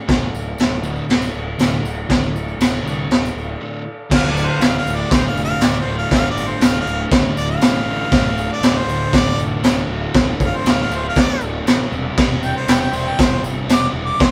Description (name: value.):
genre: garage rock duo or trio.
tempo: 119 BPM.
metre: 4/4.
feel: straight.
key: D minor.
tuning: A4 = 440 Hz.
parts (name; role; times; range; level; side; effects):
combo organ; sustained chords; 0.0-14.3 s; G4 to F5; -36 LUFS; equal; none.
fuzz guitar; riff; 0.1-14.3 s; D2 to C4; -26 LUFS; equal; distortion.
fuzz picked electric bass; bass; 0.1-14.3 s; D1 to D2; -28 LUFS; equal; overdrive.
raw garage drum kit; drums; 0.1-14.3 s; crash cymbal, kick drum, snare drum; -19 LUFS; equal; none.
tambourine; percussion; 0.3-13.9 s; none; -43 LUFS; equal; none.
clear harmonica; melody; 4.1-14.3 s; C5 to D6; -26 LUFS; equal; overdrive, analog delay.
room: light reverb.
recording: band playing live in one room.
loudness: -18 LUFS.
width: mono.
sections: 0.0-4.1 A section; 4.1-14.3 B section.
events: break 3.6-4.1.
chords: 0.0 Dm; 11.9 C/E.